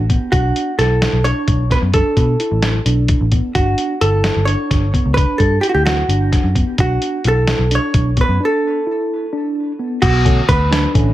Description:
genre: progressive instrumental, band music in an uneven meter.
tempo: 260 BPM (eighths).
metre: 7/8.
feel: straight.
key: B minor.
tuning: A4 = 440 Hz.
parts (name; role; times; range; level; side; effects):
vintage hollow-body jazz guitar; melody; 0.0-10.9 s; F#4 to C#5; -19 LUFS; right 2 dB; tape echo.
mellow tine electric piano; arpeggios; 0.0-11.1 s; B3 to E4; -22 LUFS; equal; medium stereo tremolo, tape echo.
vintage muted picked electric bass; bass; 0.0-11.1 s; G1 to B2; -16 LUFS; equal; none.
lo-fi sampler-style drum kit; drums; 0.1-11.1 s; crash cymbal, hi-hat, kick drum, snare drum; -18 LUFS; equal; none.
barky tine electric piano; accompaniment; 10.2-11.1 s; D3 to C#4; -22 LUFS; left 3 dB; phaser.
room: light reverb.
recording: none.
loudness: -13 LUFS.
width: side -14 dB against mid.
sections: 0.0-10.0 A section; 10.0-11.1 B section.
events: break 8.4-10.0.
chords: 0.0 Bm7; 3.5 Gmaj7(no3); 6.8 D5/B; 10.0 Bm7.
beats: 0.10 | 0.33 0.55 0.78 1.01 1.24 1.47 1.71 | 1.94 2.17 2.40 2.63 2.86 3.09 3.32 | 3.55 3.78 4.01 4.24 4.47 4.70 4.93 | 5.16 5.39 5.63 5.86 6.09 6.32 6.55 | 6.78 7.01 7.24 7.47 7.71 7.94 8.17 | 8.40 8.63 8.86 9.10 9.33 9.56 9.79 | 10.02 10.25 10.48 10.71 10.95.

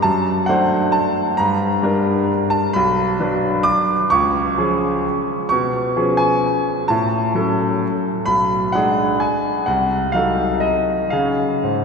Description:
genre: classical, piano waltz.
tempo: 114-139 BPM.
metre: 3/4.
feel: rubato.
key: unclear.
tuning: A4 = 445 Hz.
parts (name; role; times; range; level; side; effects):
bright grand piano; solo; 0.0-11.8 s; B1 to D6; -16 LUFS; equal; none.
room: wet cathedral reverb, RT60 5.1 s.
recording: minimal, uncompressed stereo recording.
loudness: -16 LUFS.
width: side -5 dB against mid.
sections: 0.0-11.8 A section.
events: none.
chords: 0.0 D7/F#; 1.4 Gm; 2.7 Bm; 4.1 C#; 5.5 C#7/B; 6.9 F#m/A; 8.3 G#dim/B; 9.7 Cdim7; 11.1 C#.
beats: | 0.05 0.49 0.94 | 1.38 1.83 2.29 | 2.74 3.19 3.66 | 4.12 4.57 5.04 | 5.50 5.96 6.43 | 6.89 7.35 7.82 | 8.28 8.74 9.20 | 9.67 10.13 10.63 | 11.13 11.64.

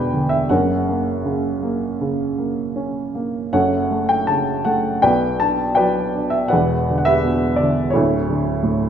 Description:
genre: classical, lyrical solo piano.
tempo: 78-88 BPM.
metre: 4/4.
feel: rubato.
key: unclear.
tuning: A4 = 441 Hz.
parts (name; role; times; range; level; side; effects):
warm upright piano; solo; 0.0-8.9 s; D1 to B5; -17 LUFS; equal; none.
room: moderate concert hall reverb, RT60 2.2 s.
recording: minimal, uncompressed stereo recording.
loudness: -17 LUFS.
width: side -8 dB against mid.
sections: 0.0-8.9 A section.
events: none.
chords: 0.0 Em7; 0.5 F#; 3.5 F#m; 5.0 Bm; 6.5 Em7; 7.9 Dsus2.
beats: | 0.51 1.24 1.99 2.75 | 3.52 4.27 5.02 5.78 | 6.52 7.25 7.95 8.63.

